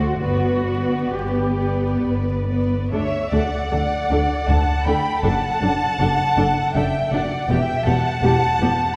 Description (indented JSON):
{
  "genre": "classical, slow romantic movement for string orchestra",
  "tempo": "65-82 BPM",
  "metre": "3/4",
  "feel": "rubato",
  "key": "D major",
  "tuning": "A4 = 440 Hz",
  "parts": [
    { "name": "rich chamber violin section", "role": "melody", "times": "0.0-9.0 s", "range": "D5 to B5", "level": "-28 LUFS", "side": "equal", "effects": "none" },
    { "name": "rich chamber violin section", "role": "second line", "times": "0.0-9.0 s", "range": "B4 to G5", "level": "-28 LUFS", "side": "equal", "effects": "none" },
    { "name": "rich chamber viola section", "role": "accompaniment", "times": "0.0-8.7 s", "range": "A3 to A4", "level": "-27 LUFS", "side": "equal", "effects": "none" },
    { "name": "rich chamber double bass section", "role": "bass", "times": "0.0-8.7 s", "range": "E1 to D2", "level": "-26 LUFS", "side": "equal", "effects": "none" },
    { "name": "warm chamber cello section", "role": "bass", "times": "0.0-8.7 s", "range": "D2 to G4", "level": "-28 LUFS", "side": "equal", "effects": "none" }
  ],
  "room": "wet scoring stage reverb, RT60 1.5 s",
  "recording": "heard from further back in the room, vinyl crackle",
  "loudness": "-20 LUFS",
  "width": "mono",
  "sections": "0.0-2.9 A section; 2.9-9.0 B section",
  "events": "none",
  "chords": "0.2 G; 2.9 D; 5.2 D/F#; 7.5 Em",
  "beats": "| 0.22 1.13 2.04 | 2.92 3.72 4.48 | 5.24 5.99 6.75 | 7.49 8.23"
}